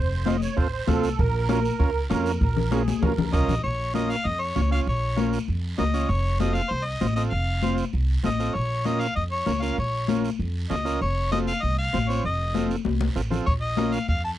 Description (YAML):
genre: latin, cumbia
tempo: 195 BPM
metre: 4/4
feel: straight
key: Bb minor, Bb harmonic minor from 3.6 s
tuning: A4 = 440 Hz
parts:
  - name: musette accordion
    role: second line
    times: 0.0-3.5 s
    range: Ab4 to Eb5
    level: -29 LUFS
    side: right 6 dB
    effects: none
  - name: upright bass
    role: bass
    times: 0.0-14.3 s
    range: F1 to F2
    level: -26 LUFS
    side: right 1 dB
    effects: none
  - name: overdriven combo organ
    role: accompaniment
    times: 0.3-14.0 s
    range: C4 to Db5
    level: -28 LUFS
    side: right 6 dB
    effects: none
  - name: bombo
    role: percussion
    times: 0.3-3.5, 13.5-14.2 s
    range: none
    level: -26 LUFS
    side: equal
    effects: none
  - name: congas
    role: percussion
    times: 0.3-14.2 s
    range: none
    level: -28 LUFS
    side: left 8 dB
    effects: none
  - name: guiro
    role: percussion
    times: 0.3-14.4 s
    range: none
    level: -41 LUFS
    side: right 5 dB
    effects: none
  - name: mellow harmonica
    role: melody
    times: 3.3-14.3 s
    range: C5 to A5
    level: -28 LUFS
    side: left 2 dB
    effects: none
room: little or no reverb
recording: dry, close 1970s-style studio recording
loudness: -22 LUFS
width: side -13 dB against mid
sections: 0.0-3.6 A section; 3.6-14.4 B section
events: drum fill 2.7-3.6, 12.9-13.5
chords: 0.0 F; 1.2 Bbm; 6.1 F7; 8.6 Bbm; 11.0 F7; 13.5 Bbm